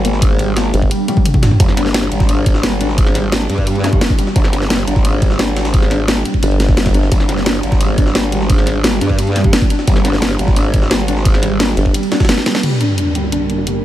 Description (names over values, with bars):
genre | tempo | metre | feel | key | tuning
dark technical drum and bass | 174 BPM | 4/4 | straight | G phrygian | A4 = 438 Hz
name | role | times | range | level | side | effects
felt-muted upright piano | arpeggios | 0.0-13.7 s | G3 to D4 | -19 LUFS | equal | lush chorus, sidechain pumping, low-pass filter, analog delay
growl bass | bass | 0.0-11.8 s | G1 to G2 | -17 LUFS | equal | chorus, tube saturation
drum and bass drum kit | drums | 0.0-13.7 s | crash cymbal, hi-hat, snare drum, toms | -18 LUFS | equal | small room ambience
jungle sampler-style drum kit | drums | 0.0-13.8 s | ride cymbal, snare drum | -26 LUFS | equal | high-pass filter on snare, low-pass filter on snare, small room ambience, high-pass filter on cymbals, low-pass filter on cymbals, high-pass filter on room, low-pass filter on room
electronic kick drum | drums | 0.2-12.3 s | none | -14 LUFS | equal | overdrive, small room ambience
formant-sweep wobble bass | bass | 0.7-0.9, 6.4-7.1, 11.8-11.9 s | G1 | -14 LUFS | equal | chorus
zap and sub drop | sound effects | 3.8-3.9, 12.6-13.8 s | none | -22 LUFS | equal | none
dark analog pad | sustained chords | 12.6-13.8 s | G3 to Bb4 | -24 LUFS | right 2 dB | chorus, sidechain pumping
room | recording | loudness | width
light reverb, digital ambience | none | -12 LUFS | side -13 dB against mid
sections
0.0-12.6 A section; 12.6-13.8 B section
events
drum fill 1.1-1.6, 12.4; band accent 12.5; impact 12.6-13.8; filter sweep on analog synth pad 12.6-13.8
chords
0.0 G5; 12.6 Gm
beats
| 0.22 0.56 0.91 1.25 | 1.60 1.94 2.29 2.63 | 2.98 3.32 3.67 4.01 | 4.36 4.70 5.05 5.39 | 5.74 6.08 6.43 6.77 | 7.12 7.46 7.81 8.15 | 8.50 8.84 9.19 9.53 | 9.88 10.22 10.56 10.91 | 11.26 11.60 11.94 12.29 | 12.63 12.98 13.32 13.67